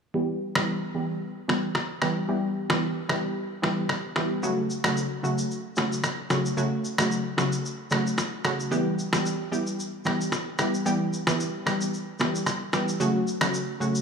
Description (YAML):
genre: afrobeats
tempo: 112 BPM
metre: 4/4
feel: swing 55% on 16ths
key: E dorian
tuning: A4 = 440 Hz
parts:
  - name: analog pluck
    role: accompaniment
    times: 0.1-14.0 s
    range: C#3 to G4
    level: -26 LUFS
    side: equal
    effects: chorus, low-pass filter
  - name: electronic rim click, finger snaps and shaker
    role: drums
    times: 0.6-14.0 s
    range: none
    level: -28 LUFS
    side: equal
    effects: overdrive
room: moderate lush hall reverb, RT60 2.8 s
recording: studio ambience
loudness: -24 LUFS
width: side -6 dB against mid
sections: 0.1-8.7 A section; 8.7-14.0 B section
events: filter sweep on synth pluck 0.1-8.7; kick muted 8.7-14.0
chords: 0.1 Em; 4.4 F#m; 8.7 Em; 13.0 F#m